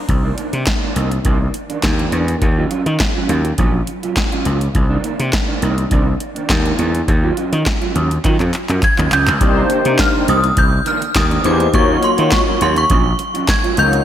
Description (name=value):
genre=early-eighties boogie funk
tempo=103 BPM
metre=4/4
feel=straight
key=unclear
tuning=A4 = 440 Hz
part: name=electric guitar at the edge of break-up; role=riff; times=0.1-14.0 s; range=Eb3 to Gb4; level=-22 LUFS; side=right 4 dB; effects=ensemble chorus, slapback echo
part: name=gritty slap bass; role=bass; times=0.1-14.0 s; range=Bb1 to Eb3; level=-17 LUFS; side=equal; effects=overdrive
part: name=electro analog drum machine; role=drums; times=0.1-14.0 s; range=handclaps, hi-hat, kick drum, snare drum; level=-18 LUFS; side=equal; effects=none
part: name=synth chime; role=melody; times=8.8-14.0 s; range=C6 to Ab6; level=-17 LUFS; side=equal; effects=ensemble chorus, phaser, slapback echo
part: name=mellow synth brass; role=accompaniment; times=9.4-14.0 s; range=Bb3 to Db5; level=-19 LUFS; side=left 3 dB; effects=chorus, slapback echo
room=moderate concert hall reverb, RT60 2.0 s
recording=big arena sound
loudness=-13 LUFS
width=side -10 dB against mid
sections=0.1-9.4 A section; 9.4-14.0 B section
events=drum fill 8.2-9.4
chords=0.1 Cm9; 2.4 Ebm9; 4.7 Cm9; 7.1 Ebm9; 9.4 Cm9; 11.7 Ebm9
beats=| 0.09 0.67 1.25 1.84 | 2.42 3.00 3.58 4.17 | 4.75 5.33 5.91 6.50 | 7.08 7.66 8.24 8.83 | 9.41 9.99 10.57 11.16 | 11.74 12.32 12.90 13.49